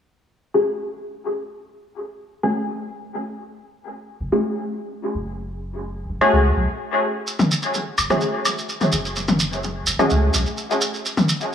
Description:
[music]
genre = dub techno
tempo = 127 BPM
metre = 4/4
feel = straight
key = F# minor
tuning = A4 = 436 Hz
[part]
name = filtered dub chord stab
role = stabs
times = 0.5-10.2 s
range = A3 to G#4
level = -22 LUFS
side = left 1 dB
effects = chorus, phaser, dub echo
[part]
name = soft dub sub bass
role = bass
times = 4.2-10.4 s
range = F#1 to C#2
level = -23 LUFS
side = equal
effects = none
[part]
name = shekere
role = percussion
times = 7.3-11.5 s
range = none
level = -24 LUFS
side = right 3 dB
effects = none
[part]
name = electronic toms and woodblock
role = percussion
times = 7.4-11.3 s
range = none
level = -22 LUFS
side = left 2 dB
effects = overdrive, dub echo
[sound]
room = wet echo chamber reverb, RT60 1.8 s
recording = small room ambience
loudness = -19 LUFS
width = side -8 dB against mid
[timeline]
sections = 0.0-7.3 A section; 7.3-11.5 B section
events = filter sweep on synth stab 0.0-7.3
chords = 0.0 F#madd9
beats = 0.18 0.66 1.13 | 1.60 2.07 2.55 3.02 | 3.49 3.96 4.44 4.91 | 5.38 5.85 6.33 6.80 | 7.27 7.74 8.22 8.69 | 9.16 9.63 10.11 10.58 | 11.05

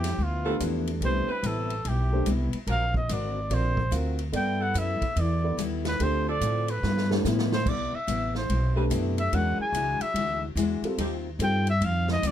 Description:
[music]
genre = jazz, big band swing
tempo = 144 BPM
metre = 4/4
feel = swing 65% on 8ths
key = G major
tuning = A4 = 440 Hz
[part]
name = warm trumpet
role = melody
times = 0.0-12.3 s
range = F4 to G#5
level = -29 LUFS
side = equal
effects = none
[part]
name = picked steel-string acoustic guitar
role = accompaniment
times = 0.0-12.3 s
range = G2 to A#4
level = -34 LUFS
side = left 6 dB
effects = none
[part]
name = upright bass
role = bass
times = 0.0-12.3 s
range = Ab1 to A2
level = -27 LUFS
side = equal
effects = none
[part]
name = swinging big-band drum kit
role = drums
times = 0.0-12.3 s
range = crash cymbal, hi-hat, kick drum, ride cymbal, snare drum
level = -35 LUFS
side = equal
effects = none
[part]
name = warm saxophone section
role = sustained chords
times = 0.4-11.2 s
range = F3 to B4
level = -35 LUFS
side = right 3 dB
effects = none
[part]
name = warm grand piano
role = accompaniment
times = 0.5-11.6 s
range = G3 to E#5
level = -31 LUFS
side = equal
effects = none
[sound]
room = little or no reverb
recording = none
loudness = -24 LUFS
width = side -10 dB against mid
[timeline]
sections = 0.0-7.7 A section; 7.7-12.3 A section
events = trumpet solo 0.0-12.3; drum fill 6.8-7.7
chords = 0.0 G13; 1.0 Cmaj7; 2.7 D7alt; 4.3 G69; 6.0 Dm7; 6.8 G13; 7.7 Cmaj7; 9.3 E9; 11.0 Eb69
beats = 0.19 0.61 | 1.02 1.44 1.85 2.27 | 2.68 3.10 3.51 3.93 | 4.34 4.76 5.17 5.59 | 6.00 6.42 6.84 7.25 | 7.67 8.08 8.50 8.91 | 9.33 9.74 10.16 10.57 | 10.99 11.40 11.82 12.23

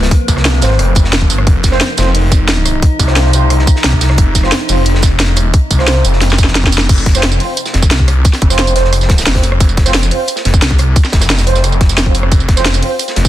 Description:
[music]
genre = dark technical drum and bass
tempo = 177 BPM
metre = 4/4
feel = straight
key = unclear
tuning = A4 = 441 Hz
[part]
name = metallic inharmonic drone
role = sustained chords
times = 0.0-6.9 s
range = C3 to Eb4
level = -21 LUFS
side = equal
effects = chorus, built-in reverb, sidechain pumping
[part]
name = snarling distorted saw bass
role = bass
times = 0.0-13.3 s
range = F1 to C2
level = -12 LUFS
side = equal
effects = distortion, overdrive
[part]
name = crunchy breakbeat drum kit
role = drums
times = 0.0-13.2 s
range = hi-hat, snare drum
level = -24 LUFS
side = left 1 dB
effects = high-pass filter on hats, high-pass filter on snare, high-pass filter on room
[part]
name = drum and bass drum kit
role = drums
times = 0.1-13.3 s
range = crash cymbal, hi-hat, rim click, snare drum, tambourine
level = -16 LUFS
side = right 1 dB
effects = none
[part]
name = electronic kick drum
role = drums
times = 0.1-13.3 s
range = none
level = -10 LUFS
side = equal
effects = none
[part]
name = mellow brass ensemble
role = stabs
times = 0.6-12.9 s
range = C4 to C5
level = -19 LUFS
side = right 3 dB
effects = tape echo
[sound]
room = studio reverb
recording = dense, heavily limited modern master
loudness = -9 LUFS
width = side -13 dB against mid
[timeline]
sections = 0.0-6.9 A section; 6.9-13.3 A section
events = drop 0.0-6.9, 6.9-13.3; drum fill 6.2-6.9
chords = 0.0 F5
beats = | 0.11 0.45 0.79 1.13 | 1.47 1.81 2.15 2.49 | 2.83 3.16 3.50 3.84 | 4.18 4.52 4.86 5.20 | 5.54 5.88 6.21 6.55 | 6.89 7.23 7.57 7.91 | 8.25 8.59 8.93 9.27 | 9.61 9.94 10.28 10.62 | 10.96 11.30 11.64 11.98 | 12.32 12.65 12.99

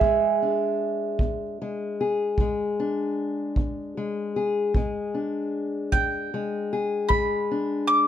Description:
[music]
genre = acoustic country blues, solo or duo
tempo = 51 BPM (dotted quarters)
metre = 12/8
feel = straight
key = E mixolydian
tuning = A4 = 439 Hz
[part]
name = bowl-back mandolin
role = melody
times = 0.0-8.1 s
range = G#4 to D6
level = -24 LUFS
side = right 4 dB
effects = plate reverb
[part]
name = fingerpicked steel-string acoustic guitar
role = accompaniment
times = 0.0-8.1 s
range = E2 to G#4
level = -26 LUFS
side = left 4 dB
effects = none
[part]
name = kick drum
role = drums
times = 0.0-7.3 s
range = none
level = -25 LUFS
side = equal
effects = none
[sound]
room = moderate small room reverb, RT60 0.6 s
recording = dark, warm production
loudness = -24 LUFS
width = side -10 dB against mid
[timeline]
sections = 0.0-8.1 A section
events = none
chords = 0.0 E7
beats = | 0.02 1.20 2.38 3.56 | 4.74 5.92 7.10

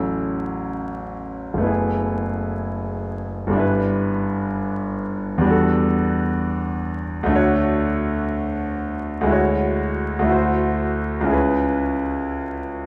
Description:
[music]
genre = classical, impressionist solo piano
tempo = 54-66 BPM (dotted quarters)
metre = 6/8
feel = rubato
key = unclear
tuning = A4 = 440 Hz
[part]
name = clear concert grand piano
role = solo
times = 0.0-12.9 s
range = F#1 to C#5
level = -22 LUFS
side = equal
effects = none
[sound]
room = moderate scoring stage reverb, RT60 1.7 s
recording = vinyl crackle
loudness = -22 LUFS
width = mono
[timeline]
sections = 0.0-12.9 A section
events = none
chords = 0.0 A6; 1.7 F#m11; 3.6 G6; 5.5 Em11; 7.4 Dmaj7; 10.3 D9; 11.4 C#m7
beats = 0.72 | 1.69 2.67 | 3.62 4.58 | 5.53 6.46 | 7.39 8.35 | 9.35 10.34 | 11.36 12.40

